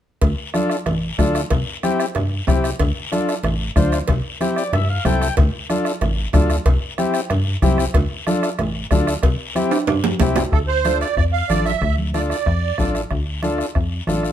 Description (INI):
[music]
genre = latin, cumbia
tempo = 186 BPM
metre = 4/4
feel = straight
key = D minor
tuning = A4 = 439 Hz
[part]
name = plucky analog bass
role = bass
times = 0.2-14.3 s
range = A1 to G2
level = -21 LUFS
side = equal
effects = none
[part]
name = bombo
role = percussion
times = 0.2-14.3 s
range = none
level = -21 LUFS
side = left 1 dB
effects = none
[part]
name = congas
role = percussion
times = 0.2-14.2 s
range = none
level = -27 LUFS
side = right 2 dB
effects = none
[part]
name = cowbell and timbales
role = percussion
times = 0.2-10.4 s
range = none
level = -25 LUFS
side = right 5 dB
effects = none
[part]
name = guiro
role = percussion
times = 0.2-14.3 s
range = none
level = -33 LUFS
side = left 5 dB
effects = none
[part]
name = combo organ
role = accompaniment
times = 0.5-14.3 s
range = C4 to G5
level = -22 LUFS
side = left 3 dB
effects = none
[part]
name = musette accordion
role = melody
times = 10.5-12.9 s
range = A4 to F5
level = -22 LUFS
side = right 8 dB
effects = none
[sound]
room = moderate studio reverb, RT60 0.8 s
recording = minimal, uncompressed stereo recording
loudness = -17 LUFS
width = side -10 dB against mid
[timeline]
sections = 0.2-10.5 A section; 10.5-14.3 B section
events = transistor combo organ fill 4.4-5.4; drum fill 9.7-10.5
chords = 0.2 Dm; 1.5 C; 2.8 Dm; 4.1 C; 5.4 Dm; 6.7 C; 7.9 Dm; 9.2 C; 10.5 Dm